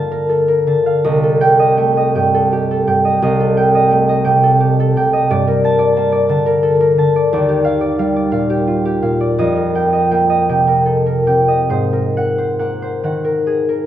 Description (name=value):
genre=classical, solo harp piece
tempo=44-60 BPM (dotted quarters)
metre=6/8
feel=rubato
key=unclear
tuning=A4 = 440 Hz
part: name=concert harp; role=solo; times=0.0-13.9 s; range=C2 to A5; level=-12 LUFS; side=equal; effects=none
room=wet scoring stage reverb, RT60 2.0 s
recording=none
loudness=-12 LUFS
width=side -11 dB against mid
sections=0.0-13.9 A section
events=none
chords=0.0 Gm9; 1.0 Cm6; 5.3 Gmadd9; 7.3 Ebmaj9; 9.4 F11; 11.7 Ab9